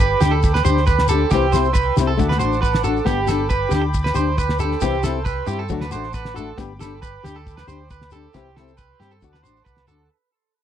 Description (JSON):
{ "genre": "highlife guitar band", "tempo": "136 BPM", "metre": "4/4", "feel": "straight", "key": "G major", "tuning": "A4 = 441 Hz", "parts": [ { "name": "accordion", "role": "sustained chords", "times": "0.0-10.1 s", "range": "F#5 to E6", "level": "-32 LUFS", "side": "left 1 dB", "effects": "light tremolo tuning" }, { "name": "electric guitar at the edge of break-up", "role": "arpeggios", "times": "0.0-10.1 s", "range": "G4 to C5", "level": "-22 LUFS", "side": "right 7 dB", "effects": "tape echo" }, { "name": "hollow-body short-scale fingered electric bass", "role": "bass", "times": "0.0-10.1 s", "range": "G1 to G2", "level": "-23 LUFS", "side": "equal", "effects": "none" }, { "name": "damped 70s drum kit", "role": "drums", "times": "0.0-9.9 s", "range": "kick drum, snare drum", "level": "-22 LUFS", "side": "equal", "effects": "none" }, { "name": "flamenco guitar", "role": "accompaniment", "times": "0.2-10.0 s", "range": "E3 to G4", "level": "-23 LUFS", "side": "left 10 dB", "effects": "none" }, { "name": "agogo bells", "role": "percussion", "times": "0.2-9.9 s", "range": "none", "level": "-34 LUFS", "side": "left 15 dB", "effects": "none" }, { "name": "shekere", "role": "percussion", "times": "0.2-10.0 s", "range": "none", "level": "-27 LUFS", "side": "left 4 dB", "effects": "none" } ], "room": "little or no reverb", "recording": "dry, close 1970s-style studio recording", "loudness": "-17 LUFS", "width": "side -10 dB against mid", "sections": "0.0-10.1 A section", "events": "fade-out 0.0-10.1", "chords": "0.0 G; 1.3 C; 2.2 D; 3.1 G; 4.8 C; 5.7 D; 6.6 G; 8.3 C; 9.2 D" }